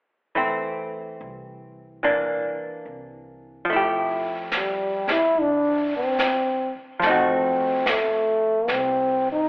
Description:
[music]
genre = jazz ballad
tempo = 72 BPM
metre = 4/4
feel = swing 68% on 8ths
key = F major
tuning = A4 = 438 Hz
[part]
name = hollow-body jazz guitar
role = accompaniment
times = 0.4-9.5 s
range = E3 to G4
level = -23 LUFS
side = equal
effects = none
[part]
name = upright bass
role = bass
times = 1.2-9.5 s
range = C2 to F2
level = -45 LUFS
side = equal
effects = none
[part]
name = vintage brush drum kit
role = drums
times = 3.7-9.5 s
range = brushed snare drum, hi-hat, snare drum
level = -28 LUFS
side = equal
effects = none
[part]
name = growling trombone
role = melody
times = 4.6-9.5 s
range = G3 to E4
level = -21 LUFS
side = equal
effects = none
[sound]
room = moderate concert hall reverb, RT60 1.9 s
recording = recorded in a church or concert hall, telephone sound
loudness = -20 LUFS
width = side -28 dB against mid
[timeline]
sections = 0.4-3.7 A section; 3.7-9.5 B section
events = none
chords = 0.4 C6; 2.0 C9; 3.7 Fmaj9; 7.0 F7b9

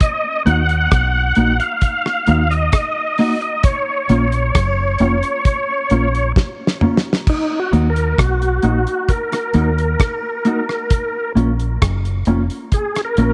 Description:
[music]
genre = roots reggae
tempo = 66 BPM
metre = 4/4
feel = straight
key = Eb minor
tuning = A4 = 440 Hz
[part]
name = tonewheel organ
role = melody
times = 0.0-13.3 s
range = Eb4 to Gb5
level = -22 LUFS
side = equal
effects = chorus vibrato, fast rotary speaker
[part]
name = damped 70s drum kit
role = drums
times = 0.0-13.3 s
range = crash cymbal, hi-hat, kick drum, rim click, snare drum, toms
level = -19 LUFS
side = equal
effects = none
[part]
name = mellow electric guitar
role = accompaniment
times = 0.5-13.3 s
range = Bb3 to Gb4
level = -23 LUFS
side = equal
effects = spring reverb
[part]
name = deep dub fingered electric bass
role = bass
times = 0.5-13.3 s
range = F1 to Eb2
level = -20 LUFS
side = equal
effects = none
[sound]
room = light reverb, small room ambience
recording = none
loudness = -17 LUFS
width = mono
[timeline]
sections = 0.0-7.3 A section; 7.3-13.3 B section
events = drum fill 6.4-7.3; tonewheel organ solo 7.3-13.3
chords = 0.0 Ebm; 3.6 Bbm; 7.3 Ebm; 10.9 Bbm

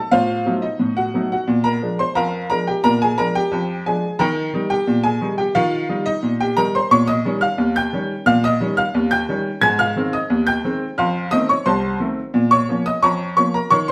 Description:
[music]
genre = ragtime piano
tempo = 88 BPM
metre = 2/4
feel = straight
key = Eb major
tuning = A4 = 444 Hz
[part]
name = clear upright piano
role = solo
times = 0.0-13.9 s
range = C2 to Ab6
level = -19 LUFS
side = equal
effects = none
[sound]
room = wet studio reverb, RT60 0.8 s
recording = heard from further back in the room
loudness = -19 LUFS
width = mono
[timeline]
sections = 0.0-13.9 A section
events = none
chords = 0.0 Adim7; 1.5 Bb7; 4.2 Eb; 6.9 Eb7; 9.6 Ab; 11.0 F7; 12.3 Bbm

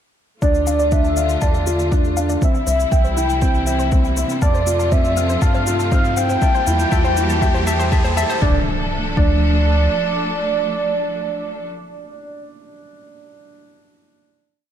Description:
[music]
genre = piano and strings electronica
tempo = 120 BPM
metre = 4/4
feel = straight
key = D minor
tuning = A4 = 440 Hz
[part]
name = warm velvety synth lead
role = melody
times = 0.4-12.4 s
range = D5 to G5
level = -22 LUFS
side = right 1 dB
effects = chorus, tape echo
[part]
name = rich symphonic string section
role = sustained chords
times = 0.4-11.7 s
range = C3 to A4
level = -26 LUFS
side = right 1 dB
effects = sidechain pumping
[part]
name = analog pluck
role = arpeggios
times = 0.4-9.3 s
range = C5 to A5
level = -28 LUFS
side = left 3 dB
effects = chorus, sidechain pumping, tape echo
[part]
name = felt-muted upright piano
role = riff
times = 0.4-14.7 s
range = C4 to A5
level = -24 LUFS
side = equal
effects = tape echo
[part]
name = round analog bass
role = bass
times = 0.4-9.9 s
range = C2 to G2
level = -20 LUFS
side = equal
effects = sidechain pumping
[part]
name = electronic kick drum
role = drums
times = 0.4-9.3 s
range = none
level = -18 LUFS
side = equal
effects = none
[part]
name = shaker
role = drums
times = 0.4-8.4 s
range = none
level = -32 LUFS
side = left 3 dB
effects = none
[part]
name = riser and impact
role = sound effects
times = 2.6-11.7 s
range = none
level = -28 LUFS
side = equal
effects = none
[sound]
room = light reverb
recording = none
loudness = -15 LUFS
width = side -9 dB against mid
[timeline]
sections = 0.4-8.4 build; 8.4-12.4 final chord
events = build-up 0.4-8.4; filter sweep on synth arpeggio sound 0.4-8.4; riser 2.6-8.4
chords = 0.4 Dm; 2.4 C; 4.4 F; 6.4 Edim; 8.4 Dm

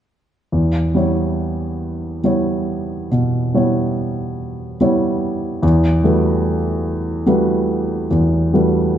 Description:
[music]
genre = classical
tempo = 45-49 BPM (dotted quarters)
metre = 12/8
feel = rubato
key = E dorian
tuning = A4 = 437 Hz
[part]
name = dark baby grand piano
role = accompaniment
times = 0.5-9.0 s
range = E2 to C#5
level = -16 LUFS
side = equal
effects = none
[sound]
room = moderate recital hall reverb, RT60 1.4 s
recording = minimal, uncompressed stereo recording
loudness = -16 LUFS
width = side -10 dB against mid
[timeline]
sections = 0.5-9.0 A section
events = none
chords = 0.5 Em6; 5.6 Gmaj9/E

